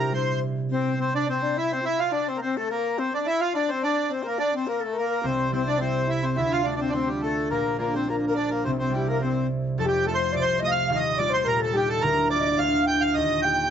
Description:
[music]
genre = celtic folk, Celtic reel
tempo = 212 BPM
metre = 4/4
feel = swing 53% on 8ths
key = C mixolydian, F mixolydian from 9.8 s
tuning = A4 = 441 Hz
[part]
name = accordion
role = melody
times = 0.0-13.7 s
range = G3 to G5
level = -26 LUFS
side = right 3 dB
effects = none
[part]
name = breathy mellow silver concert flute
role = second line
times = 0.0-13.7 s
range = C4 to G5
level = -27 LUFS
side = left 6 dB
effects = none
[part]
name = concert harp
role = accompaniment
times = 0.0-3.1, 5.2-13.7 s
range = D1 to G4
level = -27 LUFS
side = right 1 dB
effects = none
[sound]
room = moderate studio reverb, RT60 0.9 s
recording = nothing above 7.7 kHz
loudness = -22 LUFS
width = side -8 dB against mid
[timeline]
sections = 0.7-9.8 A section; 9.8-13.7 B section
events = none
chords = 0.0 C; 0.7 N.C.; 5.2 C; 6.4 Dm; 7.5 Bb; 8.6 C; 9.8 F; 10.9 Ebadd9; 12.0 Bb/D; 13.1 Eb

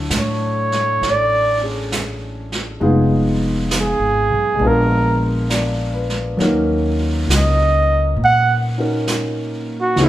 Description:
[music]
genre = jazz ballad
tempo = 67 BPM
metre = 4/4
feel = swing 67% on 8ths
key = unclear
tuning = A4 = 440 Hz
[part]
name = warm baby grand piano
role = accompaniment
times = 0.0-10.1 s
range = E3 to D5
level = -21 LUFS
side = equal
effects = none
[part]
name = upright bass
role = bass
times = 0.0-10.1 s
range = F1 to A#2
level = -20 LUFS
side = equal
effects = none
[part]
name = vintage brush drum kit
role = drums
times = 0.1-10.1 s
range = brushed snare drum, hi-hat, snare drum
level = -24 LUFS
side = right 2 dB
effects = none
[part]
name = warm flugelhorn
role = melody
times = 0.2-10.1 s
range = E4 to F#5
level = -17 LUFS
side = right 2 dB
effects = none
[sound]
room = moderate recital hall reverb, RT60 1.3 s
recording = recorded in a church or concert hall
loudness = -15 LUFS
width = side -14 dB against mid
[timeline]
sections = 0.0-10.1 A section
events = flugelhorn solo 0.0-10.1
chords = 0.0 Dmaj9; 2.8 Fm7b5; 4.6 A#7b9; 6.4 D#m7

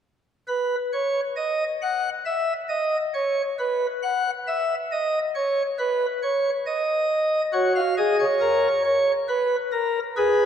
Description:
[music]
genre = classical, baroque-style 3-part fugue for pipe organ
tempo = 68 BPM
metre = 4/4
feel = straight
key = unclear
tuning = A4 = 440 Hz
[part]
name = pipe organ, sparkling flutes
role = solo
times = 0.5-10.4 s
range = F#4 to F#5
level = -21 LUFS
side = equal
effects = none
[sound]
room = wet church reverb, RT60 3.0 s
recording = dark, warm production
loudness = -21 LUFS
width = side -8 dB against mid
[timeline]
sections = 0.5-10.5 A section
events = none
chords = 0.5 N.C.; 7.5 F#; 9.3 N.C.

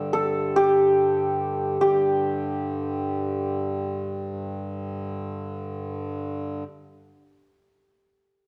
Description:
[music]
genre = indian classical, Hindustani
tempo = free time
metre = none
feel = none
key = unclear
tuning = A4 = 440 Hz
[part]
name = santur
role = melody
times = 0.0-6.7 s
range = G4 to E5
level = -25 LUFS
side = equal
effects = slapback echo
[part]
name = pedal harmonium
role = drone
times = 0.0-6.6 s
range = G2 to D3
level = -33 LUFS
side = equal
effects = none
[sound]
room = moderate recital hall reverb, RT60 1.5 s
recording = dark, warm production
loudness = -25 LUFS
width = mono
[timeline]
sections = 0.0-1.8 A section; 1.8-6.1 B section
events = none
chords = none

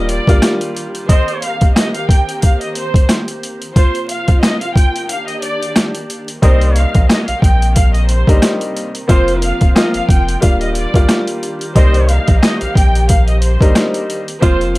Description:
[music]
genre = hip hop, boom-bap hip-hop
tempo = 90 BPM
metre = 4/4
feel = swing 57% on 16ths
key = C minor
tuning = A4 = 440 Hz
[part]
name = warm studio violin section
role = melody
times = 0.0-14.7 s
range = C5 to G5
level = -21 LUFS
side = equal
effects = high-pass filter, low-pass filter, tape echo, plate reverb
[part]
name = warm upright piano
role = accompaniment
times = 0.0-1.0, 6.4-14.8 s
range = F3 to D5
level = -19 LUFS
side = left 1 dB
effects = high-pass filter, low-pass filter, plate reverb
[part]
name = warm studio string section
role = sustained chords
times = 0.0-14.8 s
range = C3 to G4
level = -26 LUFS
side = right 1 dB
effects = high-pass filter, low-pass filter, plate reverb
[part]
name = warm sub bass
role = bass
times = 0.0-0.4, 6.4-14.8 s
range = Eb1 to C2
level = -15 LUFS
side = equal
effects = none
[part]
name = boom bap sampler-style drum kit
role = drums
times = 0.1-14.8 s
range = hi-hat, kick drum, rim click, snare drum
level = -12 LUFS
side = equal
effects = overdrive
[part]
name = clear saxophone section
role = stabs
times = 1.1-14.6 s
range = C4 to Eb5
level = -25 LUFS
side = right 2 dB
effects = high-pass filter, low-pass filter, tape echo, plate reverb
[sound]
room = light reverb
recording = vinyl crackle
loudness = -11 LUFS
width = side -20 dB against mid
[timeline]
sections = 0.0-14.8 A section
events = break 5.1-6.4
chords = 0.0 Ebmaj7; 1.1 Cm7; 3.8 Fsus4; 5.1 Ebmaj7; 6.4 Cm7; 9.1 Fsus4; 10.4 Ebmaj7; 11.8 Cm7

